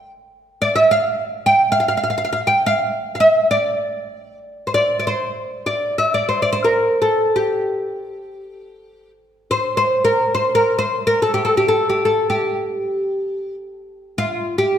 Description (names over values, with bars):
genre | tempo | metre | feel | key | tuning
Turkish makam ensemble | free time | none | none | unclear | A4 = 438 Hz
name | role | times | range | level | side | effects
oud | solo | 0.0-14.8 s | F4 to G5 | -16 LUFS | equal | none
room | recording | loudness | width
moderate recital hall reverb, RT60 1.5 s | none | -16 LUFS | side -9 dB against mid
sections
0.0-14.8 A section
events
none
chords
none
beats
free time